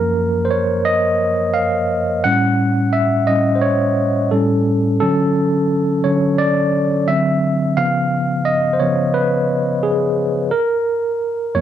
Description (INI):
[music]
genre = R&B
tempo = 87 BPM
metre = 4/4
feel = swing 61% on 16ths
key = unclear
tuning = A4 = 440 Hz
[part]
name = tine electric piano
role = solo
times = 0.0-11.6 s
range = F#2 to F#5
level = -15 LUFS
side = equal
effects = fast stereo tremolo, slapback echo
[sound]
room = little or no reverb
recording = dry, close 1970s-style studio recording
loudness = -15 LUFS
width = side -10 dB against mid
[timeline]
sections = 0.0-11.6 A section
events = tine electric piano solo 0.0-11.6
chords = 0.0 F#maj7; 2.2 A7; 5.0 Dmaj7; 7.1 D9; 7.7 C#7; 10.5 N.C.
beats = 0.16 0.85 1.54 | 2.23 2.92 3.61 4.30 | 4.99 5.68 6.37 7.06 | 7.75 8.44 9.12 9.81 | 10.51 11.19